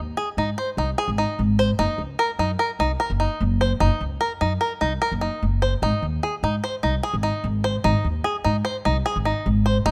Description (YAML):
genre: contemporary instrumental, chamber music in an uneven meter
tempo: 149 BPM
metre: 5/4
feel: straight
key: Ab mixolydian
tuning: A4 = 440 Hz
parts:
  - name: upright bass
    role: bass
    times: 0.0-9.9 s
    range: Gb1 to Ab2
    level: -25 LUFS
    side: equal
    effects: none
  - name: bluegrass banjo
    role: arpeggios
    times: 0.2-9.9 s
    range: Eb4 to C5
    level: -26 LUFS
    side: equal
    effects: none
room: light reverb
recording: close, detailed microphones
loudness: -23 LUFS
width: mono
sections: 0.0-9.9 A section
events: none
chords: 0.0 Ab; 1.8 Gb6; 5.8 Ab